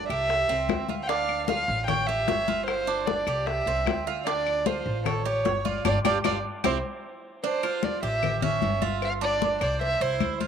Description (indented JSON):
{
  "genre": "latin, Cuban son and guajira",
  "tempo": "151 BPM",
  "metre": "4/4",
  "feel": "straight",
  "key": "D minor",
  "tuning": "A4 = 442 Hz",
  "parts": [
    { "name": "dark violin", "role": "melody", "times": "0.0-10.4 s", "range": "A4 to G5", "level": "-27 LUFS", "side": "right 1 dB", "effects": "none" },
    { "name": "Cuban tres", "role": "arpeggios", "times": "0.0-10.5 s", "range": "C4 to C#5", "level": "-30 LUFS", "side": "right 9 dB", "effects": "none" },
    { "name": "upright bass", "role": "bass", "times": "0.0-10.5 s", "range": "G1 to D2", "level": "-32 LUFS", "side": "equal", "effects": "none" },
    { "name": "bongos and cowbell", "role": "percussion", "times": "0.1-10.5 s", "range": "none", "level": "-35 LUFS", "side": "left 13 dB", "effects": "none" },
    { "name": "claves", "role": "percussion", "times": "0.1-10.4 s", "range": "none", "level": "-36 LUFS", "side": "left 15 dB", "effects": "none" },
    { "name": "congas", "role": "percussion", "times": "0.1-10.5 s", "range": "none", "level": "-32 LUFS", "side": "left 11 dB", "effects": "none" }
  ],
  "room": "moderate spring reverb, RT60 2.4 s",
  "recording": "1960s-style stereo with parts hard left and right",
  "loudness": "-24 LUFS",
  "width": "side -7 dB against mid",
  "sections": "0.0-7.4 A section; 7.4-10.5 B section",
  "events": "band accent 5.9-7.4",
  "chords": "0.3 C; 1.1 Dm; 1.9 A7; 2.7 G5; 3.5 C; 4.3 Dm7; 5.1 A7; 5.9 G5; 6.6 C; 7.4 Dm7; 8.2 A7; 9.0 G5; 9.8 C"
}